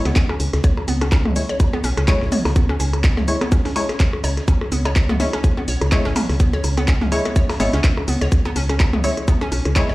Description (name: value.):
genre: minimal techno.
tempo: 125 BPM.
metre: 4/4.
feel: swing 56% on 16ths.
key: C# minor.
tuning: A4 = 439 Hz.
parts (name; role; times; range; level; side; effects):
swarming drone; texture; 0.0-9.9 s; C#4; -33 LUFS; left 1 dB; built-in reverb, sidechain pumping.
hollow square pluck; riff; 0.1-9.9 s; B3 to C#5; -27 LUFS; right 1 dB; chorus, sidechain pumping, digital delay.
woody FM bass; bass; 0.1-9.9 s; G#1 to C#2; -21 LUFS; equal; sidechain pumping.
booming analog drum machine; drums; 0.1-9.9 s; handclaps, hi-hat; -28 LUFS; equal; none.
electronic snare drum and shaker; drums; 0.1-9.9 s; none; -37 LUFS; right 1 dB; none.
electronic percussion blips and toms; percussion; 0.1-9.9 s; none; -26 LUFS; equal; digital delay.
electronic kick drum; drums; 0.2-9.9 s; none; -16 LUFS; equal; none.
filtered dub chord stab; stabs; 1.4-9.9 s; G#3 to C#5; -25 LUFS; left 1 dB; chorus, cassette tape, digital delay.
room: light reverb.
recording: played on a big sound system in a bare room, large studio reverb.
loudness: -16 LUFS.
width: side -19 dB against mid.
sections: 0.0-9.9 A section.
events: none.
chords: 0.0 C#m.